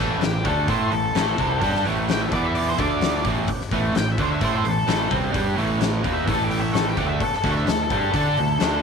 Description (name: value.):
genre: blues rock power trio and southern rock.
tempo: 129 BPM.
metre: 4/4.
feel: straight.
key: A mixolydian.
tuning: A4 = 440 Hz.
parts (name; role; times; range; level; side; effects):
overdriven tonewheel organ; sustained chords; 0.0-8.8 s; A3 to B4; -34 LUFS; right 11 dB; slow rotary speaker.
crunchy overdriven guitar; riff; 0.0-8.8 s; A2 to D5; -24 LUFS; right 1 dB; none.
fuzz fingered electric bass; bass; 0.0-8.8 s; A1 to D3; -26 LUFS; right 1 dB; overdrive.
octave-fuzz lead guitar; melody; 0.2-8.8 s; G4 to G5; -26 LUFS; left 1 dB; distortion.
oversized low-tuned drum kit; drums; 0.2-8.7 s; hi-hat, kick drum, snare drum; -26 LUFS; left 4 dB; none.
room: moderate spring reverb, RT60 1.8 s, small room ambience.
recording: 1960s-style stereo.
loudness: -19 LUFS.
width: side -6 dB against mid.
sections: 0.0-8.8 A section.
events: lead electric guitar solo 0.0-8.8.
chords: 0.0 A7; 2.3 E5; 2.8 D5; 3.2 A7; 7.4 D7.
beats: 0.22 0.69 1.15 | 1.62 2.08 2.55 3.02 | 3.48 3.95 4.42 4.88 | 5.35 5.81 6.28 6.75 | 7.21 7.68 8.14 8.61.